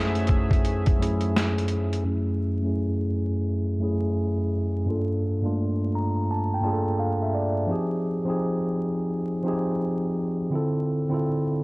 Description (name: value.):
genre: lo-fi hip hop.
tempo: 85 BPM.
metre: 4/4.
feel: swing 66% on 16ths.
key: unclear.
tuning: A4 = 440 Hz.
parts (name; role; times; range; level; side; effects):
mellow tine electric piano; accompaniment; 0.0-11.6 s; F#2 to Bb5; -23 LUFS; equal; medium stereo tremolo, cassette tape, low-pass filter.
warm analog pad; sustained chords; 0.0-2.0 s; F#3 to E5; -33 LUFS; left 1 dB; chorus.
boom bap sampler-style drum kit; drums; 0.2-2.0 s; hi-hat, kick drum, snare drum; -24 LUFS; equal; none.
room: moderate spring reverb, RT60 2.4 s.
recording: worn, warbling old tape, cassette tape, vinyl crackle, warbly pitch drift.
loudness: -23 LUFS.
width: side -24 dB against mid.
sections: 0.0-2.0 A section; 2.0-11.6 B section.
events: filter sweep on tine electric piano 2.0-11.6; tine electric piano fill 5.6-7.7.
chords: 0.0 F#m9; 4.9 Gm9; 7.7 Fm9; 10.5 Dm9.